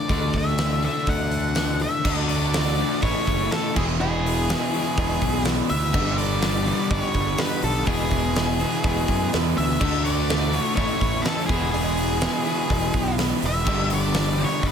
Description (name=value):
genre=classic rock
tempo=124 BPM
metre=4/4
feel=straight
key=unclear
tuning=A4 = 440 Hz
part: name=octave-fuzz lead guitar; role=melody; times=0.0-14.7 s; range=G#4 to F#5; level=-27 LUFS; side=left 2 dB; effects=distortion
part: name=bright tonewheel organ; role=sustained chords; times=0.0-14.7 s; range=E3 to F5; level=-38 LUFS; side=right 1 dB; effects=none
part: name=overdriven electric guitar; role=riff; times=0.0-14.7 s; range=E2 to D4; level=-29 LUFS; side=left 10 dB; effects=none
part: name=overdriven electric guitar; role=riff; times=0.0-14.7 s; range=G2 to F#4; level=-31 LUFS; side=right 14 dB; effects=spring reverb
part: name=fuzz fingered electric bass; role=bass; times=0.1-14.7 s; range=E1 to F#2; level=-26 LUFS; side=right 1 dB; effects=overdrive
part: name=huge arena drum kit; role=drums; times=0.1-14.7 s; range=crash cymbal, hi-hat, kick drum, snare drum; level=-26 LUFS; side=equal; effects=none
part: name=cowbell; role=percussion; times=0.1-14.7 s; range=none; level=-39 LUFS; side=equal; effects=none
part: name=crunchy overdriven guitar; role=riff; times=2.0-14.7 s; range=E2 to D4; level=-29 LUFS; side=right 1 dB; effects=none
room=light reverb, studio reverb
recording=none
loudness=-20 LUFS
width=side -7 dB against mid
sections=0.0-2.1 A section; 2.1-14.7 B section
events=none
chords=0.0 D; 3.0 A; 3.8 E; 5.9 G; 7.9 E; 9.8 D; 10.8 A; 11.5 E; 13.7 G